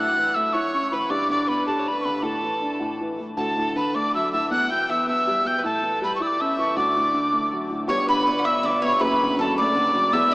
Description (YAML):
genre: celtic folk, Celtic jig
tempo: 106 BPM (dotted quarters)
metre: 6/8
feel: straight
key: D major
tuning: A4 = 440 Hz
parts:
  - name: tin whistle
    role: melody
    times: 0.0-10.3 s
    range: A5 to G6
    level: -22 LUFS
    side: equal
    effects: none
  - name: clear fiddle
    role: second line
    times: 0.0-10.3 s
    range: A4 to G5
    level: -29 LUFS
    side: equal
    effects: none
  - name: dark upright piano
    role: accompaniment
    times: 0.0-10.3 s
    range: E1 to G4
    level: -26 LUFS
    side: equal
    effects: none
  - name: mandolin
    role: second line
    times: 7.9-10.3 s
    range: A4 to E5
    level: -27 LUFS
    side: equal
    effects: none
room: wet cathedral reverb, RT60 5.5 s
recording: in a vast, echoing space, small speaker sound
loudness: -20 LUFS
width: side -22 dB against mid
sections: 0.0-7.9 A section; 7.9-10.3 B section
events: none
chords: 0.0 A; 1.1 G; 2.2 Asus4; 2.8 A5; 3.4 D; 4.5 Em; 5.6 A7; 6.8 D; 7.9 G; 9.0 D/F#